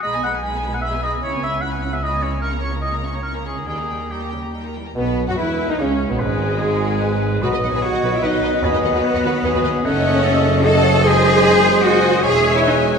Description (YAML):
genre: classical, dramatic, fast romantic movement for symphony orchestra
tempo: 149 BPM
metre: 3/4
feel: rubato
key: G# minor, C# minor from 9.8 s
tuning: A4 = 438 Hz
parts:
  - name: rich symphonic violin section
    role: melody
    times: 0.0-13.0 s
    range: G#3 to C#6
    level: -29 LUFS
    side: left 3 dB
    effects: none
  - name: warm oboe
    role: second line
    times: 0.0-13.0 s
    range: F#4 to G#5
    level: -25 LUFS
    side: equal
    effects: none
  - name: warm symphonic violin section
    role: second line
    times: 0.0-13.0 s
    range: C#4 to A5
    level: -30 LUFS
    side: left 2 dB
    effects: none
  - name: rich studio viola section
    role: accompaniment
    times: 0.0-13.0 s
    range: G3 to E5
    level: -26 LUFS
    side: right 1 dB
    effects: none
  - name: rich symphonic cello section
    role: bass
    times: 0.0-12.7 s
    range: B2 to A4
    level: -22 LUFS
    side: right 2 dB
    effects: none
  - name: warm studio double bass section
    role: bass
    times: 0.0-13.0 s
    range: E1 to F#2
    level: -24 LUFS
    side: right 1 dB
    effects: none
  - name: mellow hollow silver concert flute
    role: second line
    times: 5.0-13.0 s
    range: C#4 to D#5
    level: -26 LUFS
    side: left 3 dB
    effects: none
  - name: warm bassoon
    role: accompaniment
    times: 5.0-13.0 s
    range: G#2 to A3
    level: -25 LUFS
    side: left 1 dB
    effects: none
  - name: clear trombone section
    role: sustained chords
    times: 5.0-13.0 s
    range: G#2 to B3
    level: -28 LUFS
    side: right 2 dB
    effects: none
  - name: warm French horn section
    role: sustained chords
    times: 5.0-13.0 s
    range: G#3 to A4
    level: -24 LUFS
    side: left 3 dB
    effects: none
  - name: mellow trumpet section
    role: stabs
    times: 5.0-12.9 s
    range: G#3 to D#5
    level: -27 LUFS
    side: left 2 dB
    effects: none
  - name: mellow tuba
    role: bass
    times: 5.0-13.0 s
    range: E1 to D#2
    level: -25 LUFS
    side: right 2 dB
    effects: none
room: wet scoring stage reverb, RT60 1.6 s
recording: minimal, uncompressed stereo recording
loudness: -16 LUFS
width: side -6 dB against mid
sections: 0.0-5.0 A section; 5.0-13.0 B section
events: none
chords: 0.0 G#m/B; 1.2 C#m7; 2.4 A#dim/C#; 3.7 D#; 5.0 C#m11; 6.2 G#m; 7.4 B; 8.6 B/D#; 9.8 D#m7b5/F#; 11.0 G#7/F#; 12.2 C#m/E